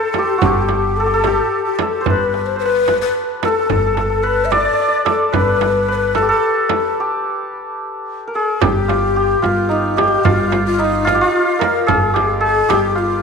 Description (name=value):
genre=Persian modal ensemble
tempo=73 BPM (dotted quarters)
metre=6/8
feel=straight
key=G dastgah mahur, G dastgah shur from 8.6 s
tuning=A4 = 440 Hz
part: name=santur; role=melody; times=0.0-13.2 s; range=Eb4 to D5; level=-17 LUFS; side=right 1 dB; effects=none
part: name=breathy mellow ney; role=second line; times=0.0-13.2 s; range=Eb4 to E5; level=-19 LUFS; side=left 7 dB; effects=none
part: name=frame drum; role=percussion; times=0.1-12.8 s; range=none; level=-21 LUFS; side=right 10 dB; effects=none
part: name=tombak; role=percussion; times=0.2-12.8 s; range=none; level=-25 LUFS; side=left 3 dB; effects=none
part: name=upright bass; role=bass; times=0.4-13.2 s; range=G1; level=-23 LUFS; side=right 2 dB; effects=none
room=moderate echo chamber reverb, RT60 2.1 s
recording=1960s-style stereo with parts hard left and right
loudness=-14 LUFS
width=side -5 dB against mid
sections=0.0-8.6 A section; 8.6-13.2 B section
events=stop 7.0-8.6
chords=none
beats=| 0.42 1.24 | 2.06 2.88 | 3.71 4.52 | 5.34 6.16 | 6.98 7.80 | 8.62 9.44 | 10.26 11.07 | 11.89 12.71